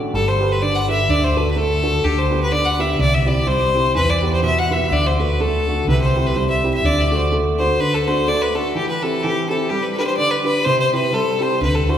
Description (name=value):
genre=celtic folk, Celtic polka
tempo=125 BPM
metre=2/4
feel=swing 57% on 8ths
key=D mixolydian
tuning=A4 = 440 Hz
part: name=warm upright piano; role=accompaniment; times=0.0-12.0 s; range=A1 to B4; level=-22 LUFS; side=right 1 dB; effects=none
part: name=bright fiddle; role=melody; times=0.1-12.0 s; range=G4 to F#5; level=-19 LUFS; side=left 1 dB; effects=none
part: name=mellow fretless electric bass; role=bass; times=0.1-7.8, 11.6-12.0 s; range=G1 to E2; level=-20 LUFS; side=equal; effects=none
room=wet church reverb, RT60 2.5 s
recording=recorded in a church or concert hall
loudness=-16 LUFS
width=side -9 dB against mid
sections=0.1-7.8 A section; 7.8-12.0 B section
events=none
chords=0.1 Gadd9; 1.1 D; 2.0 G/D; 3.0 C; 4.0 Em; 4.9 D; 5.9 C; 6.8 D; 8.7 C/E; 9.7 G; 10.7 C